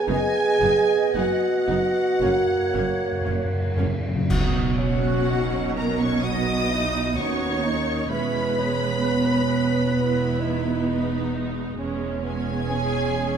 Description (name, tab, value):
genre	classical, slow romantic movement for symphony orchestra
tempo	55-66 BPM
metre	4/4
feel	rubato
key	B major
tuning	A4 = 440 Hz
part	rich symphonic violin section	melody	0.0-13.4 s	F#5 to D#6	-31 LUFS	left 2 dB	none
part	large flute ensemble	second line	0.0-13.4 s	F#4 to D#5	-30 LUFS	equal	none
part	warm oboe	second line	0.0-3.8 s	F#5 to G#5	-32 LUFS	right 2 dB	none
part	warm symphonic violin section	second line	0.0-13.4 s	F#4 to G#5	-35 LUFS	left 2 dB	none
part	dark bassoon	accompaniment	0.0-13.4 s	A#3 to F#4	-30 LUFS	right 3 dB	none
part	mellow French horn section	sustained chords	0.0-13.4 s	F#3 to G#4	-26 LUFS	right 2 dB	none
part	rich symphonic viola section	accompaniment	0.1-13.4 s	F#3 to E4	-30 LUFS	equal	none
part	clear symphonic double bass section	bass	0.1-13.4 s	E1 to D#2	-29 LUFS	right 5 dB	none
part	rich symphonic cello section	bass	0.1-13.4 s	D#2 to B2	-29 LUFS	right 2 dB	none
part	cymbal swell, clash cymbals and concert bass drum	percussion	0.1-6.2 s	none	-31 LUFS	equal	none
part	timpani	percussion	2.2-4.2 s	F#2	-27 LUFS	left 1 dB	none
room	wet concert hall reverb, RT60 2.1 s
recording	minimal, uncompressed stereo recording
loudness	-20 LUFS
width	side -8 dB against mid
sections	0.0-4.3 A section; 4.3-13.4 B section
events	timpani fill 2.2-4.3; band accent 4.3-5.3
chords	0.1 B/F#; 2.2 F#; 4.3 B; 8.1 E6; 11.8 C#m/E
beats	| 0.08 1.16 2.23 3.27 | 4.30 5.29 6.24 7.17 | 8.12 9.05 9.96 10.86 | 11.78 12.72